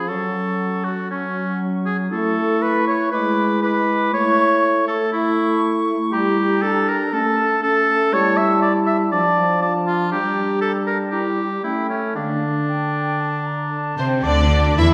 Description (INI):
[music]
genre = classical, dramatic, fast romantic movement for symphony orchestra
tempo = 119 BPM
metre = 4/4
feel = straight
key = D minor from 6.1 s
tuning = A4 = 441 Hz
[part]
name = dark clarinet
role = second line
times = 0.0-14.9 s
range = C#4 to E4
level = -27 LUFS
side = equal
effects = none
[part]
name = silver concert flute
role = second line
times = 0.0-14.9 s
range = D5 to D6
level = -30 LUFS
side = equal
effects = none
[part]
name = warm oboe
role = second line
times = 0.0-14.9 s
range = C#4 to E5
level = -23 LUFS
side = equal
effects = none
[part]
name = warm French horn section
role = sustained chords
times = 0.0-14.9 s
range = D3 to A3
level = -26 LUFS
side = equal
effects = none
[part]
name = clear symphonic violin section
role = melody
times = 14.0-14.9 s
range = C5 to E5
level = -25 LUFS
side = equal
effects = none
[part]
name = warm symphonic violin section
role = second line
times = 14.0-14.9 s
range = C4 to E4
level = -30 LUFS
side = equal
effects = none
[part]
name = clear studio cello section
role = bass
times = 14.0-14.9 s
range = C3 to E3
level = -25 LUFS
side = equal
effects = none
[part]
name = clear symphonic viola section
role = accompaniment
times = 14.2-14.9 s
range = D4 to E4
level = -28 LUFS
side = equal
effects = none
[part]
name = bright studio double bass section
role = bass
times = 14.2-14.9 s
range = D2 to E2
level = -19 LUFS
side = equal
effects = none
[sound]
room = wet scoring stage reverb, RT60 1.6 s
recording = heard from further back in the room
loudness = -19 LUFS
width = mono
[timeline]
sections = 0.0-14.2 A section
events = none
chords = 0.1 F#m; 2.1 A; 3.1 E7/G#; 4.1 A; 6.1 Edim/G; 7.1 A; 8.1 A5/G; 9.1 Dm/F; 10.1 Gm; 11.6 A7; 12.2 Dm; 14.2 N.C.